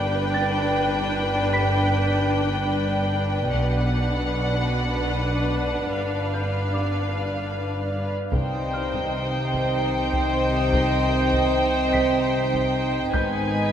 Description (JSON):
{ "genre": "cinematic, suspense film score", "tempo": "75 BPM", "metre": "3/4", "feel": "straight", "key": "C harmonic minor from 8.3 s", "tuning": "A4 = 438 Hz", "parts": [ { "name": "rich studio violin section", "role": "melody", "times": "0.0-13.7 s", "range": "F5 to Ab5", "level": "-28 LUFS", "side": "equal", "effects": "none" }, { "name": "rich studio viola section", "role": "accompaniment", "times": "0.0-13.7 s", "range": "D4 to B4", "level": "-28 LUFS", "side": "left 1 dB", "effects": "none" }, { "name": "glass harmonica", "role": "sustained chords", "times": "0.0-13.7 s", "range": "B4 to Ab5", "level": "-30 LUFS", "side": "equal", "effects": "none" }, { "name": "dark studio double bass section", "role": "bass", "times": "0.0-13.7 s", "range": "G1 to C2", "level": "-28 LUFS", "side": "equal", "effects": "none" }, { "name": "warm studio cello section", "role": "bass", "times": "0.0-13.7 s", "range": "G2 to C3", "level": "-28 LUFS", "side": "equal", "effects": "none" }, { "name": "dark grand piano", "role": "texture", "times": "0.3-13.7 s", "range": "B5 to B6", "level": "-34 LUFS", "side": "right 1 dB", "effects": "none" }, { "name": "taiko ensemble", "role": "drums", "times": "3.5-13.7 s", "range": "none", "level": "-31 LUFS", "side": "equal", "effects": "none" }, { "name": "rich studio violin section", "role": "second line", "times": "8.3-13.7 s", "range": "Cb5 to C5", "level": "-26 LUFS", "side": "right 3 dB", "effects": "none" }, { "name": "dark French horn section", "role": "sustained chords", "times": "8.3-13.7 s", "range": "Eb3 to C4", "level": "-29 LUFS", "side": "right 2 dB", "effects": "none" }, { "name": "timpani", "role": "percussion", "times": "8.3-9.5 s", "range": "C3", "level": "-35 LUFS", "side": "right 1 dB", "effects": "none" } ], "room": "wet cathedral reverb, RT60 5.8 s", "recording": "in a vast, echoing space", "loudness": "-21 LUFS", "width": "side -9 dB against mid", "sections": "0.0-8.3 A section; 8.3-13.7 B section", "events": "none", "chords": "0.0 G; 3.5 Bm; 5.9 G7; 8.3 Cm; 13.1 Abm", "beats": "0.34 | 1.14 1.94 2.74 | 3.54 4.34 5.14 | 5.94 6.74 7.54 | 8.34 9.14 9.94 | 10.74 11.54 12.34 | 13.14" }